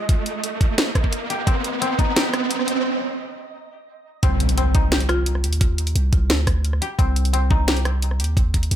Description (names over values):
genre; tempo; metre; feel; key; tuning
half-time drum and bass; 174 BPM; 4/4; half-time; C minor; A4 = 441 Hz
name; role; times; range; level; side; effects
buzzing marimba with hard mallets; melody; 0.0-0.1, 5.1-5.6 s; F4; -31 LUFS; left 2 dB; ping-pong delay
koto; arpeggios; 0.0-8.8 s; C4 to G4; -28 LUFS; left 4 dB; ping-pong delay
riser and impact; sound effects; 0.0-5.6 s; none; -26 LUFS; right 3 dB; none
flickering grainy texture; texture; 0.0-2.9 s; Eb5; -35 LUFS; right 1 dB; built-in reverb
drum and bass drum kit; drums; 0.1-8.8 s; hi-hat, rim click, snare drum; -23 LUFS; equal; studio ambience
electronic kick drum; drums; 0.1-2.1, 4.2-8.6 s; none; -19 LUFS; equal; studio ambience
long sustained 808-style bass; bass; 4.2-8.8 s; C2 to Eb2; -20 LUFS; equal; none
room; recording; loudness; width
light reverb, digital ambience; none; -18 LUFS; side -11 dB against mid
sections
0.0-4.2 A section; 4.2-8.8 B section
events
build-up 0.0-4.2; riser 0.0-2.9; filter sweep on koto 0.0-4.2; break 2.9-4.2; drop 4.2-8.8; impact 4.2-5.6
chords
0.0 Cm